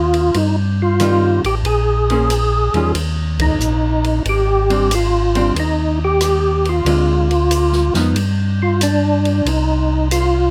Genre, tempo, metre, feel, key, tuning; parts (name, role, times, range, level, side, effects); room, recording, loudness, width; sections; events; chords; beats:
soul jazz organ trio; 92 BPM; 4/4; swing 68% on 8ths; A4 = 440 Hz
percussive tonewheel organ; melody; 0.0-10.5 s; D4 to Ab4; -19 LUFS; equal; chorus vibrato, slow rotary speaker
tonewheel organ; bass; 0.0-10.5 s; Ab1 to G2; -20 LUFS; equal; slow rotary speaker
open jazz drum kit; drums; 0.1-10.3 s; hi-hat, kick drum, ride cymbal, rim click, snare drum; -28 LUFS; equal
archtop guitar, miked and amplified; accompaniment; 1.0-8.1 s; D3 to C5; -22 LUFS; equal
little or no reverb; close, detailed microphones; -16 LUFS; mono
0.0-10.5 A section
band accent 3.3-3.6
0.0 Eb69; 1.7 Bbm9; 3.0 Eb5; 4.3 Abmaj7#11; 6.9 Dm7b5; 8.2 G5; 9.5 Cmadd11
0.35 1.00 | 1.65 2.31 2.96 3.61 | 4.26 4.91 5.56 6.21 | 6.86 7.51 8.16 8.82 | 9.47 10.12